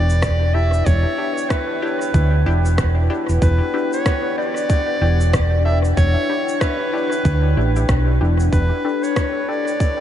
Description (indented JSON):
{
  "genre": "ambient dub",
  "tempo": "94 BPM",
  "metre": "4/4",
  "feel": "swing 60% on 16ths",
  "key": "E dorian",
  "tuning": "A4 = 442 Hz",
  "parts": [
    { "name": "bright clarinet", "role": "melody", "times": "0.0-10.0 s", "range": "B4 to E5", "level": "-23 LUFS", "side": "equal", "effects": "dub echo" },
    { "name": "deep dark ambient pad", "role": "sustained chords", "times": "0.0-10.0 s", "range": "D4 to G5", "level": "-26 LUFS", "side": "left 3 dB", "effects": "chorus, built-in reverb" },
    { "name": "filtered dub chord stab", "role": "stabs", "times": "0.0-9.7 s", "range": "D4 to A4", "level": "-28 LUFS", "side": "left 3 dB", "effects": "chorus, dub echo" },
    { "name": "hollow-body short-scale fingered electric bass", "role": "bass", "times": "0.0-8.7 s", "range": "E1 to D2", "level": "-16 LUFS", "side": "equal", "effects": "none" },
    { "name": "electronic cabasa and rim click", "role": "drums", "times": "0.1-10.0 s", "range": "none", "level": "-30 LUFS", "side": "equal", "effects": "dub echo" },
    { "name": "electronic kick drum", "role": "drums", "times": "0.2-10.0 s", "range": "none", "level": "-19 LUFS", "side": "equal", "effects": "none" }
  ],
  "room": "moderate huge ambient reverb, RT60 8.5 s",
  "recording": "dreamy mix soaked in reverb, nothing above 10.8 kHz",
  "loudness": "-16 LUFS",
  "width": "side -11 dB against mid",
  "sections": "0.0-10.0 A section",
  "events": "none",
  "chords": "0.0 Em7; 8.5 Gsus2/E",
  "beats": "0.23 | 0.87 1.50 2.14 2.78 | 3.42 4.06 4.70 5.33 | 5.97 6.61 7.25 7.89 | 8.53 9.16 9.80"
}